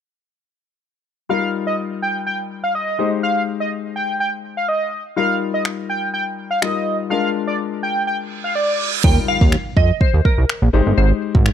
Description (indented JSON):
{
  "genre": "dance-pop",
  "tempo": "124 BPM",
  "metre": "4/4",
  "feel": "straight",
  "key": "Eb major",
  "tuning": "A4 = 443 Hz",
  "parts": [
    { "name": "octave-doubled lead", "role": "melody", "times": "1.3-8.9 s", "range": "D5 to G5", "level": "-21 LUFS", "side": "right 1 dB", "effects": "chorus, tape echo" },
    { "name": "clear concert grand piano", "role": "accompaniment", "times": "1.3-11.5 s", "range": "G3 to C5", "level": "-24 LUFS", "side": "left 9 dB", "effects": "sidechain pumping" },
    { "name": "deep house drum kit", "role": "drums", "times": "5.7-11.5 s", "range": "crash cymbal, finger snaps, kick drum", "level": "-16 LUFS", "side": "right 1 dB", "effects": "none" },
    { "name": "reverse cymbal and impact", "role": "sound effects", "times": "8.3-11.0 s", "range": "none", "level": "-26 LUFS", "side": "right 5 dB", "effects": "none" },
    { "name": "glassy wavetable pluck", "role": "melody", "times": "9.0-11.5 s", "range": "Bb4 to G5", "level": "-23 LUFS", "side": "right 1 dB", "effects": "chorus" },
    { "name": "chorused synth bass", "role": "bass", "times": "9.0-11.5 s", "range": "G1 to F2", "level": "-15 LUFS", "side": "right 1 dB", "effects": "sidechain pumping" }
  ],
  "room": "digital ambience",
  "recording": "dry, close 1970s-style studio recording",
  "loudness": "-17 LUFS",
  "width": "side -9 dB against mid",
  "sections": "1.3-9.0 A section; 9.0-11.5 B section",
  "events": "reverse cymbal 8.3-9.0; impact 9.0-11.0",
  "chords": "1.3 Ebadd9; 3.0 Abmaj7; 5.2 Ebadd9; 7.1 Bb7; 9.0 Ebadd9; 10.7 Abmaj7",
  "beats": "| 1.30 1.78 2.27 2.75 | 3.23 3.72 4.20 4.68 | 5.17 5.65 6.14 6.62 | 7.11 7.59 8.07 8.56 | 9.04 9.52 10.01 10.49 | 10.98 11.46"
}